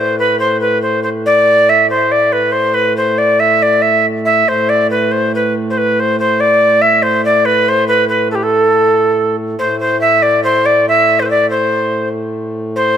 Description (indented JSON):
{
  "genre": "medieval dance",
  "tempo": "94 BPM (dotted quarters)",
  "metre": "6/8",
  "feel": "straight",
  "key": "A minor",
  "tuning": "A4 = 440 Hz",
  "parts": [
    { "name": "breathy reedy tenor recorder", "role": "melody", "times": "0.0-13.0 s", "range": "G4 to E5", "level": "-11 LUFS", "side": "equal", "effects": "none" },
    { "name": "pedal harmonium", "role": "drone", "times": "0.0-13.0 s", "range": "A2", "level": "-20 LUFS", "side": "right 1 dB", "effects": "none" }
  ],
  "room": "light reverb",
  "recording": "close, detailed microphones",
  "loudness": "-10 LUFS",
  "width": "side -9 dB against mid",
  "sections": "0.0-9.6 A section; 9.6-13.0 B section",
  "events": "none",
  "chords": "none"
}